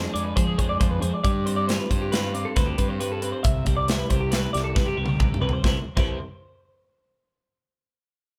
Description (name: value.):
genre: math rock and midwest emo.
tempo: 136 BPM.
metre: 5/4.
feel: straight.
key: C major.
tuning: A4 = 440 Hz.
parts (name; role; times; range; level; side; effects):
twelve-string electric guitar; accompaniment; 0.0-6.2 s; C3 to C5; -32 LUFS; equal; none.
twelve-string electric guitar; arpeggios; 0.0-6.2 s; G4 to E5; -32 LUFS; equal; spring reverb.
fuzz fingered electric bass; bass; 0.0-6.2 s; C2 to F3; -31 LUFS; equal; overdrive.
modern studio drum kit; drums; 0.2-6.1 s; crash cymbal, hi-hat, kick drum, snare drum, toms; -26 LUFS; equal; none.
room: light reverb.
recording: band playing live in one room.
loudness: -24 LUFS.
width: mono.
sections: 0.0-5.6 A section; 5.6-7.8 B section.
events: drum fill 4.8-5.6.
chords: 0.0 Fm6; 1.2 G7sus4; 3.4 Cmaj7.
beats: 0.37 0.81 | 1.25 1.69 2.12 2.56 3.00 | 3.44 3.88 4.33 4.76 5.21 | 5.64 6.08.